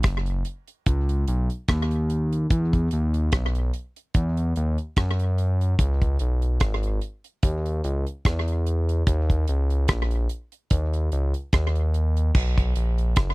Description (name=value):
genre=lovers rock reggae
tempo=73 BPM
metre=4/4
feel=swing 55% on 16ths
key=B major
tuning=A4 = 439 Hz
part: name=smooth synth bass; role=bass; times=0.0-13.3 s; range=F#1 to F#2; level=-22 LUFS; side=equal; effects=none
part: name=damped 70s drum kit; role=drums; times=0.0-13.3 s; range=crash cymbal, hi-hat, kick drum, rim click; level=-23 LUFS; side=equal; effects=slapback echo
room=little or no reverb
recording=dry, close 1970s-style studio recording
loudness=-22 LUFS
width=side -23 dB against mid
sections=0.0-12.3 A section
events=none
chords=none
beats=0.04 0.86 1.68 | 2.50 3.33 4.14 4.97 | 5.79 6.61 7.43 8.25 | 9.07 9.89 10.71 11.53 | 12.35 13.17